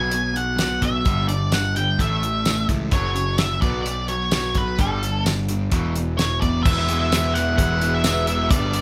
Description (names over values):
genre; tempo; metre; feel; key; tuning
classic rock; 128 BPM; 4/4; straight; unclear; A4 = 438 Hz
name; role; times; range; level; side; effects
octave-fuzz lead guitar; melody; 0.0-8.8 s; A4 to G#5; -26 LUFS; equal; distortion
biting overdriven guitar; riff; 0.0-8.8 s; E2 to E4; -31 LUFS; equal; none
crunchy overdriven guitar; riff; 0.0-8.8 s; E2 to E4; -30 LUFS; equal; none
modern bright picked electric bass; bass; 0.0-8.8 s; E1 to C#2; -28 LUFS; equal; none
damped 70s drum kit; drums; 0.1-8.8 s; crash cymbal, hi-hat, kick drum, snare drum, tambourine; -25 LUFS; equal; none
phased string machine; sustained chords; 7.3-8.8 s; D4 to E5; -35 LUFS; equal; ensemble chorus, phaser
egg shaker; percussion; 6.7-8.8 s; none; -42 LUFS; equal; none
room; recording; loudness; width
light reverb; band playing live in one room; -21 LUFS; mono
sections
0.0-6.7 A section; 6.7-8.8 B section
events
none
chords
0.0 B5; 1.1 G5; 2.0 A; 2.9 F#5; 3.6 B5; 4.8 Gsus2; 5.7 E5; 6.7 Eadd9